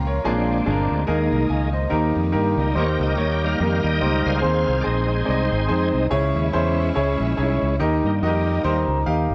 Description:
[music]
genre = gospel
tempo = 143 BPM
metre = 4/4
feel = swing 56% on 8ths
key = unclear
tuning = A4 = 440 Hz
[part]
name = clear concert grand piano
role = accompaniment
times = 0.0-9.3 s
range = Bb2 to Bb5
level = -24 LUFS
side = equal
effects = none
[part]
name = clear studio string section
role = sustained chords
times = 0.0-9.3 s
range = Eb3 to F4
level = -35 LUFS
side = equal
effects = none
[part]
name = fingered electric bass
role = bass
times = 0.0-9.3 s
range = G1 to G2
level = -25 LUFS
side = equal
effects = none
[part]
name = bright tonewheel organ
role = sustained chords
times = 0.2-8.9 s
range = G3 to G5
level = -29 LUFS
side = equal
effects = slow rotary speaker, overdrive, chorus vibrato
[sound]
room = moderate spring reverb, RT60 1.9 s, studio reverb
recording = cassette tape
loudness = -21 LUFS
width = mono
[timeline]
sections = 0.0-9.3 A section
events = tonewheel organ solo 0.0-9.3; grand piano fill 8.6-9.3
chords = 0.2 Bb7; 1.1 Ebsus4; 1.9 Eb; 4.4 Ab; 6.1 Dbm; 7.8 Eb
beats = 0.24 0.66 | 1.08 1.50 1.92 2.34 | 2.76 3.18 3.60 4.02 | 4.44 4.86 5.28 5.70 | 6.12 6.54 6.96 7.38 | 7.80 8.22 8.64 9.06

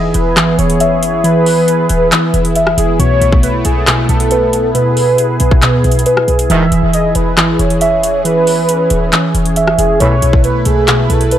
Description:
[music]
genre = hip hop, trap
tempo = 137 BPM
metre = 4/4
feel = half-time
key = E major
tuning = A4 = 442 Hz
[part]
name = warm velvety synth lead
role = second line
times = 0.0-11.4 s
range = G#4 to E5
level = -16 LUFS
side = equal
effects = chorus, digital delay
[part]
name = warm analog pad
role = sustained chords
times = 0.0-11.4 s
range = E3 to B4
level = -19 LUFS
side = equal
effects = chorus
[part]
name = muted felt-like synth keys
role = arpeggios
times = 0.0-11.4 s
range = B2 to E5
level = -14 LUFS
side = right 1 dB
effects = chorus, low-pass filter, digital delay
[part]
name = short 808-style bass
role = bass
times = 0.0-11.4 s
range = D#1 to D#2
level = -17 LUFS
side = equal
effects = none
[part]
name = trap drum kit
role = drums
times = 0.1-11.4 s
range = handclaps, hi-hat, kick drum, rim click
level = -15 LUFS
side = equal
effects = overdrive
[part]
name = bright brass ensemble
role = stabs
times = 6.5-6.6, 10.0-10.1 s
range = G#2 to E3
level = -21 LUFS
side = equal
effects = digital delay
[sound]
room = light reverb, digital ambience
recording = none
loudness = -9 LUFS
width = side -11 dB against mid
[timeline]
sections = 0.0-11.4 A section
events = none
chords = 0.0 E; 3.0 B7sus4; 6.5 E; 10.0 B7sus4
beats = 0.37 0.81 | 1.24 1.68 2.12 2.56 | 3.00 3.43 3.87 4.31 | 4.75 5.18 5.62 6.06 | 6.50 6.94 7.38 7.81 | 8.25 8.69 9.13 9.56 | 10.00 10.44 10.88 11.32

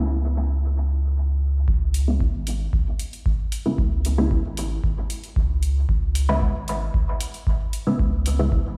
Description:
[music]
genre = dub techno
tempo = 114 BPM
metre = 4/4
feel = straight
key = C# minor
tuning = A4 = 440 Hz
[part]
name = filtered dub chord stab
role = stabs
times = 0.0-8.5 s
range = C#3 to E4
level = -29 LUFS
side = equal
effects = phaser, sidechain pumping, dub echo
[part]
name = soft dub sub bass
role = bass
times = 0.0-8.8 s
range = G#1 to C#2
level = -25 LUFS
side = equal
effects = sidechain pumping
[part]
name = electronic kick drum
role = drums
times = 1.7-8.6 s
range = none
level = -25 LUFS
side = equal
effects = none
[part]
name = electronic hi-hat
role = drums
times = 1.9-8.4 s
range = none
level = -36 LUFS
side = equal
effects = none
[sound]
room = light reverb, digital ambience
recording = played on a big sound system in a bare room, stone room reverb, low-pass filter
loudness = -23 LUFS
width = mono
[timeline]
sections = 0.0-1.7 A section; 1.7-8.8 B section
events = filter sweep on synth stab 0.0-1.7; filter sweep 0.0-1.7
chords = 0.0 C#m7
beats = 0.10 0.63 1.15 | 1.68 2.21 2.73 3.26 | 3.78 4.31 4.84 5.36 | 5.89 6.42 6.94 7.47 | 8.00 8.52

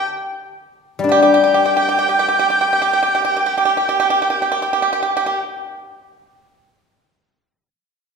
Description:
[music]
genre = chinese traditional, Chinese chamber ensemble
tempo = 53 BPM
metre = 2/4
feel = straight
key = unclear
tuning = A4 = 440 Hz
[part]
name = clear erhu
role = melody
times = 0.0-5.4 s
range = G5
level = -20 LUFS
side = equal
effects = none
[part]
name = pipa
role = second line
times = 0.0-5.4 s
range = G4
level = -18 LUFS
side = right 4 dB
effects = none
[part]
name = guzheng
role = accompaniment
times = 0.0-7.1 s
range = G3 to G4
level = -15 LUFS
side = left 5 dB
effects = none
[sound]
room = wet recital hall reverb, RT60 1.8 s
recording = heard from further back in the room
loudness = -14 LUFS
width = side -5 dB against mid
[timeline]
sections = 0.0-1.1 A section; 1.1-5.7 B section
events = slowing down 0.0-1.1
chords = none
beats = 0.04 | 1.12 2.27 | 3.40 4.54

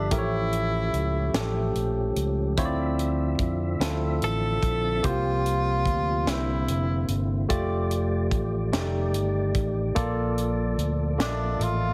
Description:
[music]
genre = slow gospel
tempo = 49 BPM (dotted quarters)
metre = 6/8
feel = straight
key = F major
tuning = A4 = 441 Hz
[part]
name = warm tenor saxophone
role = melody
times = 0.0-7.2, 11.2-11.9 s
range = D4 to A4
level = -31 LUFS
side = equal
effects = none
[part]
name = barky tine electric piano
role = accompaniment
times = 0.0-11.9 s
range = A2 to E5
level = -31 LUFS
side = equal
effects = overdrive
[part]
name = percussive tonewheel organ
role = sustained chords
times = 0.0-11.9 s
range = D3 to E5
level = -36 LUFS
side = equal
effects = slow rotary speaker, chorus vibrato
[part]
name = fingered electric bass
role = bass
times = 0.0-11.9 s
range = F1 to F2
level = -30 LUFS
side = equal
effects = none
[part]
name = tight funk drum kit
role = drums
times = 0.1-11.8 s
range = hi-hat, kick drum, snare drum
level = -32 LUFS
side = equal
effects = none
[sound]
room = light reverb, studio reverb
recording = heavily compressed radio sound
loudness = -26 LUFS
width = mono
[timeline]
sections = 0.0-11.9 A section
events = none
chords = 0.1 A7b13; 2.6 Dm9; 5.0 C7sus4; 6.3 C9; 7.5 F69; 8.7 F13; 10.0 Bbmaj7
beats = | 0.12 1.35 | 2.58 3.81 | 5.04 6.27 | 7.50 8.73 | 9.97 11.20

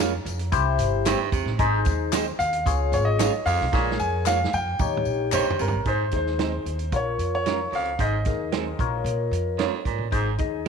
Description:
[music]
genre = uptempo 1960s-style soul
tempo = 112 BPM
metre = 4/4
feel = straight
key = Ab major from 5.9 s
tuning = A4 = 444 Hz
[part]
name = clear grand piano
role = melody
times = 0.0-9.6 s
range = Bb4 to Bb5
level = -27 LUFS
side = equal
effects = none
[part]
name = barky tine electric piano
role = accompaniment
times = 0.0-10.7 s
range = Eb4 to Eb5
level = -28 LUFS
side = left 9 dB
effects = overdrive, phaser
[part]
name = electric guitar through a small old amp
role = stabs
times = 0.0-10.7 s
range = Bb3 to Db5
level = -32 LUFS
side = right 12 dB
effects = wide subtle chorus
[part]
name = upright bass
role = bass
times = 0.0-10.7 s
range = G1 to Bb2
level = -27 LUFS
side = equal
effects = none
[part]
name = vintage drum kit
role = drums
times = 0.3-10.7 s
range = hi-hat, kick drum, snare drum, toms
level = -29 LUFS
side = right 4 dB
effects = none
[part]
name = tambourine and handclaps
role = percussion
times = 0.3-5.7 s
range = none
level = -35 LUFS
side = left 12 dB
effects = none
[part]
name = clear baritone saxophone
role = riff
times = 1.1-10.3 s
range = F2 to C3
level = -31 LUFS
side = right 12 dB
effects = none
[sound]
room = moderate plate reverb, RT60 2.2 s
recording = 1960s-style stereo with parts hard left and right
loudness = -22 LUFS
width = side -6 dB against mid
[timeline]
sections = 0.0-5.9 A section; 5.9-10.7 B section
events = drum fill 3.7-5.9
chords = 0.0 Bbm7; 0.5 C; 1.6 Ab; 2.7 Db; 3.7 Bbm7; 4.8 Eb7; 5.9 Ab; 6.9 Bbm; 8.0 Ab; 8.8 Bbm; 10.1 Ab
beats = 0.00 0.53 1.06 | 1.60 2.13 2.67 3.20 | 3.73 4.26 4.79 5.33 | 5.86 6.39 6.93 7.46 | 7.99 8.53 9.06 9.59 | 10.13 10.66

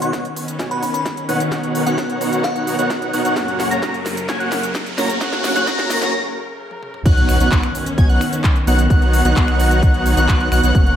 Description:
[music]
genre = EDM, festival progressive house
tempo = 130 BPM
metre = 4/4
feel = straight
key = B major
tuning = A4 = 438 Hz
[part]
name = glassy synth bell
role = melody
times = 0.0-2.8 s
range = F#5 to C#6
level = -26 LUFS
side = left 1 dB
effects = chorus, tape echo
[part]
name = clear studio string section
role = sustained chords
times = 0.0-11.0 s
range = F#2 to A#4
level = -26 LUFS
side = left 1 dB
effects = sidechain pumping
[part]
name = wide unison lead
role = arpeggios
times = 0.0-11.0 s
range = F#6 to A#6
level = -23 LUFS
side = equal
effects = sidechain pumping, tape echo
[part]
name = dense compressed supersaw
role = riff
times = 0.0-11.0 s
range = A#3 to A#5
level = -21 LUFS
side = right 1 dB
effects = sidechain pumping, low-pass filter, tape echo
[part]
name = house drum kit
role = drums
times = 0.0-11.0 s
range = crash cymbal, finger snaps, handclaps, hi-hat, shaker, snare drum, toms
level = -26 LUFS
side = equal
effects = small room ambience
[part]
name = riser and impact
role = sound effects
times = 1.2-8.9 s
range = none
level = -29 LUFS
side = equal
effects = none
[part]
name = electronic kick drum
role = drums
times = 0.1-10.8 s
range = none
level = -16 LUFS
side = equal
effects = high-pass filter on kick, small room ambience
[part]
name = saturated sub bass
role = bass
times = 7.1-11.0 s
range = F#1 to B1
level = -18 LUFS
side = equal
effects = sidechain pumping
[sound]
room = moderate plate reverb, RT60 1.1 s, digital ambience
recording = dreamy mix soaked in reverb, high-pass filter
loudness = -15 LUFS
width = side -10 dB against mid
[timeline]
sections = 0.0-7.1 A section; 7.1-11.0 B section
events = build-up 0.0-7.1; drum fill 0.0-6.1, 6.7-7.1; filter sweep on analog synth lead 0.0-7.1; filter sweep 0.0-7.1; riser 1.2-6.1; break 6.1-7.1; drop 7.1-11.0; impact 7.1-8.9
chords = 0.0 Badd9; 3.4 F#; 7.1 Badd9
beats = 0.13 0.60 1.06 | 1.52 1.98 2.44 2.90 | 3.37 3.83 4.29 4.75 | 5.21 5.67 6.13 6.60 | 7.06 7.52 7.98 8.44 | 8.90 9.37 9.83 10.29 | 10.75

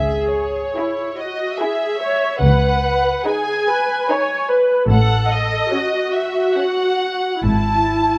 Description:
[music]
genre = classical, slow romantic movement for string orchestra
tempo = 65-75 BPM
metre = 3/4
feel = rubato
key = C# minor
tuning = A4 = 440 Hz
[part]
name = muted studio violin section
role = melody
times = 0.0-8.2 s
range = C#5 to A5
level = -24 LUFS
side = equal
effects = none
[part]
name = muted studio viola section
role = accompaniment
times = 0.0-8.2 s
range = E4 to C#5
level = -22 LUFS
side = equal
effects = none
[part]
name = muted studio cello section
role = bass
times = 0.0-8.2 s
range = G#2 to C#3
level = -27 LUFS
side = equal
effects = none
[part]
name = muted studio double bass section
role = bass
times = 0.0-8.2 s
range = G#1 to C#2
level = -22 LUFS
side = equal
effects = none
[part]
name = muted studio violin section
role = second line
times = 0.8-7.2 s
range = C#4 to C#5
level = -30 LUFS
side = equal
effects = none
[sound]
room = light reverb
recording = close, detailed microphones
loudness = -18 LUFS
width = mono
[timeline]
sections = 0.0-8.2 A section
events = none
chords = 0.0 C#m; 2.4 G#m/C#; 4.9 F#m/A; 7.5 C#m/G# (rootless)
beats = 0.76 1.60 | 2.43 3.27 4.09 | 4.89 5.72 6.56 | 7.45

